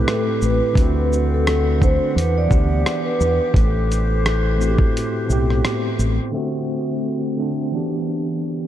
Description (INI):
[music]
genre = lo-fi hip hop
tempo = 86 BPM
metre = 4/4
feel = swing 58% on 16ths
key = A dorian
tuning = A4 = 439 Hz
[part]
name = vibraphone with soft mallets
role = melody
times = 0.0-5.6 s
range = A4 to D5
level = -24 LUFS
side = equal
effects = tape echo
[part]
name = tine electric piano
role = accompaniment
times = 0.0-8.7 s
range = A2 to A4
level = -23 LUFS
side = equal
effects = medium stereo tremolo
[part]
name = clear woodwind section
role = sustained chords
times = 0.0-6.3 s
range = D3 to F#5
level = -30 LUFS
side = left 1 dB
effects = none
[part]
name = deep dub fingered electric bass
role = bass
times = 0.0-6.2 s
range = A1 to E2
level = -19 LUFS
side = equal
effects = none
[part]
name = dusty soul sampler-style drum kit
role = drums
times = 0.1-6.2 s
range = hi-hat, kick drum, rim click, shaker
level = -21 LUFS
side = equal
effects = none
[sound]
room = moderate huge ambient reverb, RT60 5.2 s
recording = dreamy mix soaked in reverb, low-pass filter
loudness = -17 LUFS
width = side -11 dB against mid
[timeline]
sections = 0.0-6.3 A section; 6.3-8.7 B section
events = filter sweep 6.3-8.7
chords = 0.0 Am7; 0.8 D7; 2.2 Em7; 3.5 Am7; 6.3 D7; 7.7 Em7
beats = 0.06 | 0.76 1.46 2.15 2.85 | 3.55 4.25 4.95 5.64 | 6.34 7.04 7.74 8.43